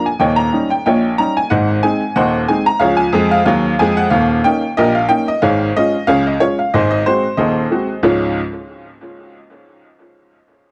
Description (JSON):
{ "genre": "ragtime piano", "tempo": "92 BPM", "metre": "2/4", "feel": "swing 54% on 16ths", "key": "Db major", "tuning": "A4 = 441 Hz", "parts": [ { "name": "bright upright piano", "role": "solo", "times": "0.0-8.4 s", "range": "Eb1 to Bb5", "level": "-15 LUFS", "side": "equal", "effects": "none" } ], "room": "moderate small room reverb, RT60 0.5 s", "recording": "worn, warbling old tape, cassette tape, warbly pitch drift", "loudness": "-15 LUFS", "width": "mono", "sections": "0.0-8.0 A section; 8.0-9.3 B section", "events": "none", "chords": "0.2 Eb7; 1.5 Ab; 2.8 Db; 4.1 Eb7; 5.4 Db/Ab; 6.7 Ab7; 8.0 Db", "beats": "| 0.21 0.86 | 1.51 2.16 | 2.81 3.46 | 4.11 4.76 | 5.41 6.07 | 6.72 7.37 | 8.03" }